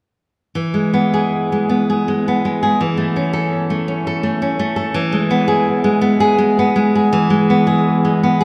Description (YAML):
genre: romantic piece for solo classical guitar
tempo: 82 BPM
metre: 3/4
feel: uneven beats, rubato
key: E major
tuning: A4 = 443 Hz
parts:
  - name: nylon-string guitar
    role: solo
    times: 0.6-8.4 s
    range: E3 to A4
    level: -16 LUFS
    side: equal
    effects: tape echo
room: wet cathedral reverb, RT60 5.2 s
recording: in a vast, echoing space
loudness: -16 LUFS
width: mono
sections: 0.5-8.4 A section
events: none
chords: 0.5 E; 2.8 A/E; 4.9 E